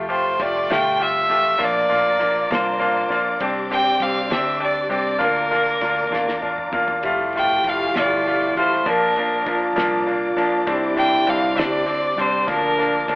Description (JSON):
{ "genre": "six-eight pop ballad", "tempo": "66 BPM (dotted quarters)", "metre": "6/8", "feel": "straight", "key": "unclear", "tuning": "A4 = 440 Hz", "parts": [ { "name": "bright grand piano", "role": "accompaniment", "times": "0.0-13.2 s", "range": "F3 to G4", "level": "-21 LUFS", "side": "left 1 dB", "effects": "none" }, { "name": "warm studio string section", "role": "sustained chords", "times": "0.0-13.2 s", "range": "D4 to D6", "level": "-30 LUFS", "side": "equal", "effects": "none" }, { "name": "picked steel-string acoustic guitar", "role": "arpeggios", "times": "0.0-13.2 s", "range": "F3 to G4", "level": "-36 LUFS", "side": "right 1 dB", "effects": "none" }, { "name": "vintage muted fingered electric bass", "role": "bass", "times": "0.0-13.2 s", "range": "F1 to E2", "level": "-36 LUFS", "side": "equal", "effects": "none" }, { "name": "clear violin", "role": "melody", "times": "0.1-13.1 s", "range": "Bb4 to G5", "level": "-20 LUFS", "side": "equal", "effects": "none" }, { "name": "damped 70s drum kit", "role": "drums", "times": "0.1-13.2 s", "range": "kick drum, ride cymbal, snare drum, toms", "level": "-33 LUFS", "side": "equal", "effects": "none" }, { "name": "dark French horn section", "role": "second line", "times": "7.0-13.2 s", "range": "D4 to F4", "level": "-26 LUFS", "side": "equal", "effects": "none" } ], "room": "moderate stone room reverb, RT60 1.1 s", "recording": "band playing live in one room, telephone sound", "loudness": "-17 LUFS", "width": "side -25 dB against mid", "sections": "0.0-13.2 A section", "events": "drum fill 6.1-7.0", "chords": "0.0 Fadd9; 1.6 Bb; 3.4 Csus2; 5.2 Bb/D; 7.0 Fadd9; 8.9 Bb; 10.7 Csus2; 12.5 Bb/D", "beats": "0.70 | 1.61 2.51 | 3.41 4.31 | 5.21 6.12 | 7.04 7.96 | 8.87 9.77 | 10.68 11.57 | 12.48" }